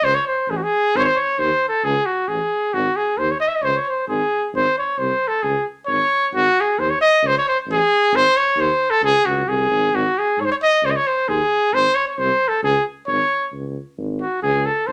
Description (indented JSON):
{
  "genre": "balkan folk",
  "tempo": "133 BPM",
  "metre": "2/4",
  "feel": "straight",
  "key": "unclear",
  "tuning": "A4 = 440 Hz",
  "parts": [
    { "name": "clear trumpet", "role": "melody", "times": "0.0-14.9 s", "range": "F#4 to E5", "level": "-19 LUFS", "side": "equal", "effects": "none" },
    { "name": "mellow tuba", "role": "bass", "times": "0.0-14.9 s", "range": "G#1 to G#2", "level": "-28 LUFS", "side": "equal", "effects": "none" }
  ],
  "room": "moderate studio reverb, RT60 0.7 s",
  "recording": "none",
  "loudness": "-19 LUFS",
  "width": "mono",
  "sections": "0.0-6.3 A section; 6.3-13.5 A section; 13.5-14.9 B section",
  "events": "trumpet solo 13.5-14.9",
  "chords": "0.0 Ammaj7; 0.9 G#5; 1.8 C#5; 2.7 G#5; 3.6 C#5; 4.5 G#; 5.4 C#5; 6.3 G#5; 7.2 C#5; 8.1 G#5; 9.0 C#5; 9.9 G#7(no3); 10.8 C#5; 11.7 G#; 12.6 C#5"
}